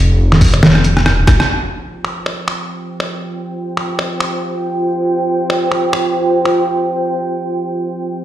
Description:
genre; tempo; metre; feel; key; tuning
deep dubstep; 139 BPM; 4/4; swing 58% on 16ths, half-time; unclear; A4 = 440 Hz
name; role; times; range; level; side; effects
dark detuned saw bass; bass; 0.0-1.3 s; F1; -12 LUFS; equal; none
trip hop sampler-style drum kit; drums; 0.3-6.6 s; finger snaps, hi-hat, rim click, snare drum; -15 LUFS; equal; overdrive
electronic kick drum; drums; 0.4-1.4 s; none; -10 LUFS; equal; none
dark analog pad; sustained chords; 1.5-8.2 s; F4 to G5; -17 LUFS; right 1 dB; chorus, vintage 12-bit sampler grit
room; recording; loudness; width
moderate digital room reverb, RT60 1.1 s; played on a big sound system in a bare room, large studio reverb; -13 LUFS; side -12 dB against mid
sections
0.0-1.5 A section; 1.5-8.2 B section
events
drum fill 0.6-1.5; band accent 1.4; break 6.7-8.2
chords
0.0 N.C.; 1.5 F5

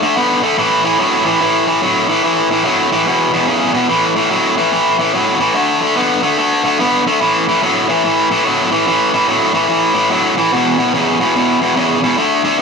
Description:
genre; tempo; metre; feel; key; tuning
blues; 145 BPM; 4/4; swing 64% on 8ths; A major; A4 = 440 Hz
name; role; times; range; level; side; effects
overdriven electric guitar; solo; 0.0-12.6 s; E2 to B3; -12 LUFS; equal; analog delay
room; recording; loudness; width
moderate plate reverb, RT60 2.8 s; none; -12 LUFS; side -5 dB against mid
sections
0.0-3.9 A section; 3.9-12.6 B section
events
none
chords
0.0 D5; 0.6 A5; 3.1 E5; 3.9 A5; 5.5 D5; 7.2 A5; 10.5 E5

